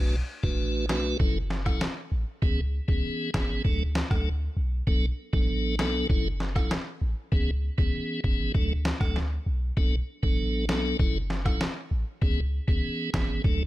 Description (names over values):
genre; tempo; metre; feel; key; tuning
dancehall; 98 BPM; 4/4; straight; F# minor; A4 = 440 Hz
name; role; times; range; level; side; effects
tonewheel organ; accompaniment; 0.0-13.6 s; E3 to B4; -31 LUFS; equal; overdrive, slow rotary speaker, sidechain pumping
clean 808-style bass; bass; 0.0-13.7 s; F#1 to D2; -28 LUFS; equal; none
trip hop sampler-style drum kit; drums; 0.4-13.6 s; kick drum, rim click, snare drum; -27 LUFS; equal; none
room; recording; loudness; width
little or no reverb; none; -25 LUFS; side -16 dB against mid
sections
0.0-13.7 A section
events
none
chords
0.0 Bm7; 1.2 F#m7; 2.4 C#m7; 3.6 D; 4.9 Bm7; 6.1 F#m7; 7.3 C#m7; 8.5 D; 9.8 Bm7; 11.0 F#m7; 12.2 C#m7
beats
0.59 1.20 1.81 | 2.42 3.04 3.65 4.26 | 4.87 5.49 6.10 6.71 | 7.32 7.93 8.55 9.16 | 9.77 10.38 10.99 11.61 | 12.22 12.83 13.44